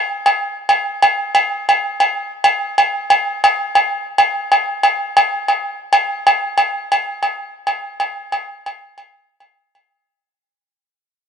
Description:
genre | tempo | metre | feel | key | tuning
highlife | 138 BPM | 4/4 | swing 55% on 16ths | none | none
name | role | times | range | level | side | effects
agogo bells | percussion | 0.3-9.8 s | none | -14 LUFS | equal | none
room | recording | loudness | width
moderate echo chamber reverb, RT60 1.7 s | nothing above 10.4 kHz | -14 LUFS | side -7 dB against mid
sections
0.0-6.4 A section; 6.4-9.8 B section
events
fade-out 6.4-9.8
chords
none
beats
0.26 0.69 | 1.13 1.56 2.00 2.43 | 2.87 3.31 3.74 4.18 | 4.61 5.05 5.48 5.92 | 6.35 6.79 7.23 7.66 | 8.10 8.53 8.97 9.41

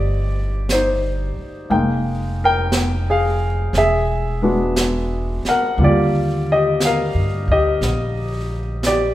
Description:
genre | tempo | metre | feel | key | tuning
jazz ballad | 59 BPM | 4/4 | swing 67% on 8ths | Eb major | A4 = 439 Hz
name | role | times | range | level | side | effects
warm baby grand piano | accompaniment | 0.0-9.1 s | D3 to G5 | -18 LUFS | left 1 dB | none
upright bass | bass | 0.0-9.1 s | E1 to G2 | -22 LUFS | equal | none
jazz brush drum kit | drums | 0.7-9.1 s | brushed snare drum, hi-hat, snare drum | -24 LUFS | right 1 dB | none
room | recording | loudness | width
moderate recital hall reverb, RT60 1.5 s | recorded in a church or concert hall | -16 LUFS | side -14 dB against mid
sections
0.0-9.1 A section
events
none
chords
0.0 Cm9; 1.7 Fm11; 3.7 E9; 5.8 Ebmaj7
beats
0.69 | 1.70 2.72 3.73 4.76 | 5.79 6.81 7.82 8.84

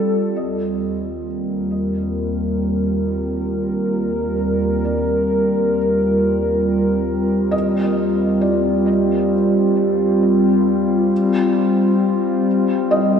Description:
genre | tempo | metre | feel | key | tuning
ambient | 67 BPM | 4/4 | straight | Eb major | A4 = 441 Hz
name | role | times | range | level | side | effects
warbly tape-like pad | sustained chords | 0.0-13.2 s | Eb2 to Bb4 | -16 LUFS | equal | chorus, built-in reverb
felt-muted upright piano | arpeggios | 0.4-13.2 s | D5 to Eb5 | -26 LUFS | left 1 dB | tape echo
room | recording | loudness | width
wet lush hall reverb, RT60 2.9 s | dreamy mix soaked in reverb, cassette tape | -16 LUFS | side -7 dB against mid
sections
0.4-13.2 A section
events
fade-in on felt piano 0.4-13.2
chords
0.4 Ebmaj7; 11.1 F9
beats
| 0.37 1.26 2.16 3.05 | 3.95 4.84 5.74 6.63 | 7.53 8.43 9.32 10.22 | 11.11 12.01 12.90

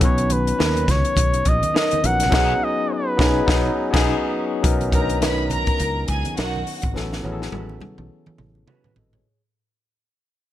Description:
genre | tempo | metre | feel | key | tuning
lush 1970s-style soul | 104 BPM | 4/4 | swing 58% on 16ths | B major | A4 = 440 Hz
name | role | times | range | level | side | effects
warm flugelhorn | melody | 0.0-4.4 s | B4 to F#5 | -22 LUFS | left 1 dB | none
barky tine electric piano | accompaniment | 0.0-9.4 s | F#3 to D#5 | -25 LUFS | left 3 dB | auto-pan
fingered electric bass | bass | 0.0-9.2 s | G#1 to D#2 | -24 LUFS | equal | none
compact cocktail drum kit | drums | 0.0-9.2 s | crash cymbal, hi-hat, kick drum, snare drum, toms | -22 LUFS | equal | none
congas | percussion | 0.2-9.3 s | none | -33 LUFS | right 4 dB | none
electric guitar through a small old amp | riff | 0.6-8.9 s | C#4 to B4 | -28 LUFS | right 7 dB | none
warm studio violin section | second line | 4.9-6.8 s | F#4 to B5 | -27 LUFS | equal | none
room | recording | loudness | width
studio ambience | none | -18 LUFS | side -13 dB against mid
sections
0.0-4.6 A section; 4.6-9.3 B section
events
band accent 2.3-4.6; fade-out 4.6-9.3; drum fill 6.9-9.3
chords
0.0 Bmaj9; 2.3 B69; 4.6 Bmaj9; 6.9 A69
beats
| 0.02 0.60 1.17 1.75 | 2.33 2.90 3.48 4.06 | 4.64 5.21 5.79 6.37 | 6.95 7.52 8.10 8.68

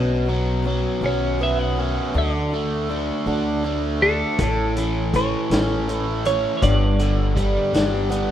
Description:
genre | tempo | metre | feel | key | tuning
folk rock and heartland rock | 54 BPM (dotted quarters) | 6/8 | straight | A mixolydian | A4 = 442 Hz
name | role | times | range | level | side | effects
picked old ladder-braced acoustic guitar | accompaniment | 0.0-8.3 s | G2 to A4 | -29 LUFS | left 3 dB | none
biting overdriven guitar | riff | 0.0-8.3 s | G2 to D4 | -23 LUFS | right 1 dB | none
upright bass | bass | 0.0-8.3 s | G1 to D2 | -24 LUFS | equal | none
twelve-string electric guitar | melody | 1.1-8.3 s | A4 to F#5 | -25 LUFS | right 1 dB | phaser, digital delay
vintage drum kit | drums | 4.4-8.3 s | hi-hat, kick drum, snare drum | -25 LUFS | equal | none
room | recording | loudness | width
light reverb, small room reverb | rough home demo mix | -19 LUFS | side -11 dB against mid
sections
0.0-8.3 A section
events
none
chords
0.0 Bsus2; 2.2 D; 4.4 A; 6.6 G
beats
1.03 | 2.15 3.28 | 4.40 5.51 | 6.63 7.74

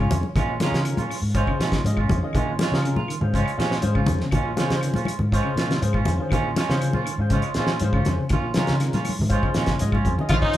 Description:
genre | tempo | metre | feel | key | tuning
afrobeat | 121 BPM | 4/4 | straight | Bb minor | A4 = 440 Hz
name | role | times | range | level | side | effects
barky tine electric piano | accompaniment | 0.0-10.6 s | Db4 to Ab5 | -31 LUFS | left 2 dB | phaser
semi-hollow electric guitar | arpeggios | 0.0-10.6 s | Db3 to F3 | -31 LUFS | left 2 dB | none
semi-hollow electric guitar | stabs | 0.0-10.5 s | Ab3 to F4 | -28 LUFS | right 5 dB | none
fingered electric bass | bass | 0.0-10.6 s | Bb1 to Db3 | -25 LUFS | equal | none
cloth-damped thuddy drum kit | drums | 0.1-10.6 s | hi-hat, kick drum, snare drum | -26 LUFS | equal | none
congas | percussion | 0.1-10.4 s | none | -28 LUFS | left 1 dB | none
claves | percussion | 0.4-10.4 s | none | -42 LUFS | left 6 dB | none
breathy tenor saxophone | melody | 10.3-10.6 s | Eb4 to F4 | -23 LUFS | left 2 dB | none
brilliant trumpet | second line | 10.3-10.6 s | Eb4 to F4 | -28 LUFS | right 3 dB | none
room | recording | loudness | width
moderate large studio reverb, RT60 1.2 s | band playing live in one room | -20 LUFS | side -13 dB against mid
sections
0.0-10.3 A section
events
tine electric piano fill 9.3-10.3; drum fill 9.9-10.3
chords
0.0 Bbm7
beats
| 0.35 0.85 1.35 1.84 | 2.34 2.84 3.34 3.83 | 4.33 4.83 5.33 5.83 | 6.32 6.82 7.32 7.81 | 8.31 8.81 9.31 9.80 | 10.30

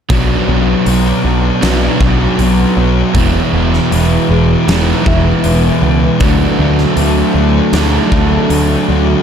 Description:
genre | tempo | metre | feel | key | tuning
rock, shoegaze and dream pop | 79 BPM | 4/4 | straight | unclear | A4 = 440 Hz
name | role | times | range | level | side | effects
fingerpicked twelve-string acoustic guitar | arpeggios | 0.1-9.2 s | F#3 to G#4 | -22 LUFS | left 5 dB | analog chorus, tape echo
overdriven semi-hollow guitar | riff | 0.1-9.2 s | B2 to E4 | -14 LUFS | right 7 dB | reverse reverb
thick fuzz guitar | riff | 0.1-9.2 s | E2 to D4 | -16 LUFS | left 8 dB | distortion, wide subtle chorus
growling picked electric bass | bass | 0.1-9.1 s | E1 to D2 | -15 LUFS | equal | overdrive
huge arena drum kit | drums | 0.1-8.7 s | hi-hat, kick drum, snare drum | -18 LUFS | equal | none
room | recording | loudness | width
moderate huge ambient reverb, RT60 6.6 s | dreamy mix soaked in reverb | -9 LUFS | side -8 dB against mid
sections
0.1-9.2 A section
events
none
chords
0.1 Bm; 3.2 E; 6.2 D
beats
| 0.11 0.87 1.63 2.40 | 3.16 3.92 4.69 5.45 | 6.21 6.98 7.74 8.51

